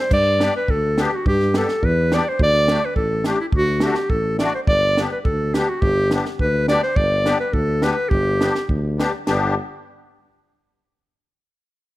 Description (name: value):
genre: alpine folk, alpine dance band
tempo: 105 BPM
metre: 2/4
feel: straight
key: G major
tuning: A4 = 441 Hz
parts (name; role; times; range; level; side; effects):
- bright clarinet; melody; 0.0-8.7 s; E4 to D5; -20 LUFS; equal; none
- mellow tuba; bass; 0.1-9.6 s; G1 to G2; -23 LUFS; equal; none
- compact cocktail drum kit; drums; 0.1-9.4 s; crash cymbal, hi-hat, kick drum, snare drum; -22 LUFS; right 1 dB; none
- musette accordion; accompaniment; 0.4-9.5 s; A3 to G4; -25 LUFS; left 3 dB; none
room: light reverb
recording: none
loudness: -17 LUFS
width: side -16 dB against mid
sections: 0.1-9.3 A section; 9.3-10.4 B section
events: none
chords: 0.1 G; 2.4 Dsus4; 3.5 D; 4.7 G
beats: | 0.11 0.68 | 1.26 1.83 | 2.40 2.96 | 3.53 4.10 | 4.67 5.25 | 5.83 6.39 | 6.96 7.54 | 8.11 8.69 | 9.27